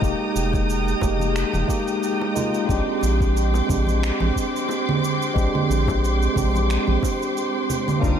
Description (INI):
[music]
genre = sunset chillout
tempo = 90 BPM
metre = 4/4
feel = swing 55% on 16ths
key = unclear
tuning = A4 = 435 Hz
[part]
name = tine electric piano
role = accompaniment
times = 0.0-8.2 s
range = Ab3 to G4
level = -24 LUFS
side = equal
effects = auto-pan, tape echo
[part]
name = clear studio string section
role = sustained chords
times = 0.0-8.2 s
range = Ab3 to Eb6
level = -27 LUFS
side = equal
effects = none
[part]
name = round analog bass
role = bass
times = 0.0-8.2 s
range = F1 to C2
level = -22 LUFS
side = equal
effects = none
[part]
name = electronic cabasa, finger snaps and congas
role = drums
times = 0.0-8.2 s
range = none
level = -30 LUFS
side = right 4 dB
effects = none
[part]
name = electronic kick drum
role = drums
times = 0.0-8.2 s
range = none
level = -25 LUFS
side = equal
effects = none
[part]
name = bongos and congas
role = percussion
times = 0.5-7.8 s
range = none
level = -34 LUFS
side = left 2 dB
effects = none
[part]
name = wind-like tuned noise texture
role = texture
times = 3.2-8.2 s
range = C5 to C6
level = -32 LUFS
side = right 3 dB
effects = built-in reverb
[sound]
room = moderate huge ambient reverb, RT60 8.9 s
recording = dreamy mix soaked in reverb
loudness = -19 LUFS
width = side -8 dB against mid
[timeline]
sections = 0.0-8.2 A section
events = none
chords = 0.0 Fm11; 2.7 Bb13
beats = | 0.03 0.70 1.36 2.03 | 2.70 3.36 4.03 4.70 | 5.36 6.03 6.70 7.36 | 8.03